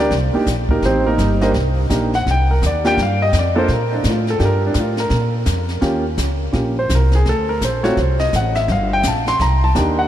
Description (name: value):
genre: jazz piano trio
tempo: 168 BPM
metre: 4/4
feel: swing 63% on 8ths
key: G minor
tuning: A4 = 440 Hz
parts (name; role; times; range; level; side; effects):
- warm grand piano; melody; 0.0-10.1 s; A3 to C6; -18 LUFS; equal; analog delay
- upright bass; bass; 0.0-10.1 s; G1 to Bb2; -18 LUFS; equal; none
- jazz brush drum kit; drums; 0.1-10.1 s; brushed snare drum, hi-hat, kick drum, snare drum; -26 LUFS; equal; none
room: moderate huge ambient reverb, RT60 4.8 s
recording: dreamy mix soaked in reverb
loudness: -15 LUFS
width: side -11 dB against mid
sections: 0.0-10.1 A section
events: grand piano solo 0.0-10.1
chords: 0.1 Cm7; 3.0 Gm7; 5.8 Eb7; 7.3 D7; 8.7 Gm; 9.4 Cm7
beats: | 0.11 0.47 0.83 1.18 | 1.54 1.90 2.25 2.61 | 2.97 3.33 3.68 4.04 | 4.40 4.75 5.11 5.47 | 5.82 6.18 6.54 6.90 | 7.25 7.61 7.97 8.33 | 8.69 9.04 9.40 9.76